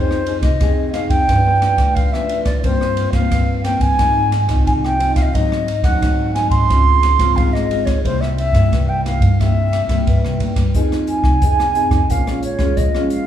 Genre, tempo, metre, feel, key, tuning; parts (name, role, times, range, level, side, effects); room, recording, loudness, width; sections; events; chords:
samba and choro; 89 BPM; 4/4; straight; F minor; A4 = 440 Hz
concert flute; melody; 0.0-13.3 s; C5 to C6; -19 LUFS; right 1 dB
nylon-string guitar; accompaniment; 0.0-13.3 s; G2 to Ab4; -22 LUFS; left 1 dB
upright bass; bass; 0.0-13.3 s; Ab1 to C3; -19 LUFS; equal
open jazz drum kit; drums; 0.1-13.3 s; hi-hat, kick drum, ride cymbal, rim click; -19 LUFS; equal
wet large studio reverb, RT60 1.3 s; heard from further back in the room; -14 LUFS; side -10 dB against mid
0.0-10.8 A section; 10.8-13.3 B section
flute solo 10.8-13.3
0.0 Fm7; 1.3 G7; 2.6 C7sus4/G; 4.0 Fm7; 5.3 Ab7; 6.7 Dbmaj7; 8.0 C7; 10.8 Fm7; 12.1 Bbm7